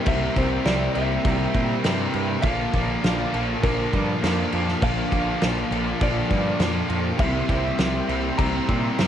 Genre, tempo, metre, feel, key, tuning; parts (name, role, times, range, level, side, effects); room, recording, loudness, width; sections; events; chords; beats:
rock, shoegaze and dream pop; 101 BPM; 4/4; straight; A4 = 441 Hz
direct-recorded clean electric guitar; melody; 0.0-9.1 s; Bb4 to Bb5; -30 LUFS; equal; wide subtle chorus, cassette tape, analog delay
warm analog pad; sustained chords; 0.0-9.1 s; E5 to E6; -35 LUFS; equal; chorus, cassette tape
direct-recorded clean electric guitar; riff; 0.0-9.1 s; Bb2 to Bb4; -30 LUFS; right 10 dB; reverse reverb, cassette tape
distorted electric guitar; riff; 0.0-9.1 s; Bb2 to C4; -28 LUFS; right 1 dB; overdrive, cassette tape
thick fuzz guitar; riff; 0.0-9.1 s; Bb2 to C4; -30 LUFS; left 8 dB; distortion, analog chorus, cassette tape
growling picked electric bass; bass; 0.1-9.1 s; Bb1 to Bb2; -27 LUFS; equal; overdrive
loose indie drum kit; drums; 0.1-9.1 s; crash cymbal, kick drum, snare drum; -25 LUFS; equal; cassette tape
light reverb; home recording on cassette; -20 LUFS; side -10 dB against mid
0.0-9.1 A section
0.0 C7; 2.4 Bbmaj7; 7.2 C7
| 0.07 0.67 1.26 1.85 | 2.45 3.04 3.63 4.23 | 4.82 5.42 6.01 6.61 | 7.20 7.79 8.39 8.99